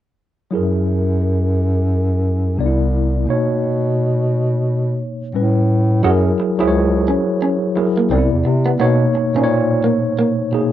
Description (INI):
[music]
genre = R&B, neo-soul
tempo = 87 BPM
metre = 4/4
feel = swing 61% on 16ths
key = unclear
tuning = A4 = 440 Hz
[part]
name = tine electric piano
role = accompaniment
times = 0.5-10.7 s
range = A2 to D5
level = -18 LUFS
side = equal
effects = overdrive, medium stereo tremolo
[part]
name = mellow bass clarinet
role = bass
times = 0.5-9.9 s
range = C2 to C3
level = -17 LUFS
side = equal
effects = none
[part]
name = electric guitar through a small old amp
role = second line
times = 6.0-10.6 s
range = A#3 to F#4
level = -20 LUFS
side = right 3 dB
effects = none
[sound]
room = little or no reverb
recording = dry, close 1970s-style studio recording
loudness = -15 LUFS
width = side -12 dB against mid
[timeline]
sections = 0.5-6.0 A section; 6.0-10.7 B section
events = none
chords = 0.5 F#9; 2.6 Cmaj9; 3.3 Bmaj9; 5.3 A9; 6.0 F#9; 8.1 Cmaj9; 8.8 Bmaj9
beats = | 0.52 1.21 1.90 2.58 | 3.27 3.96 4.65 5.34 | 6.03 6.72 7.41 8.10 | 8.79 9.48 10.17